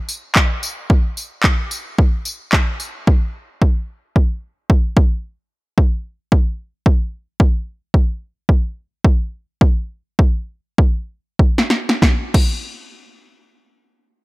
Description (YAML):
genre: pop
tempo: 94-111 BPM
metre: 4/4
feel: swing 60% on 16ths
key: none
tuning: none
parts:
  - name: punchy analog drum machine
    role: drums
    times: 0.1-12.5 s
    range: crash cymbal, handclaps, kick drum, snare drum, tambourine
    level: -14 LUFS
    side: equal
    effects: overdrive
room: little or no reverb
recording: none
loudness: -16 LUFS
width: side -22 dB against mid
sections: 0.0-3.1 A section; 3.1-12.0 B section; 12.0-14.2 C section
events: slowing down 7.4-12.0; drum fill 10.8-12.0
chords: none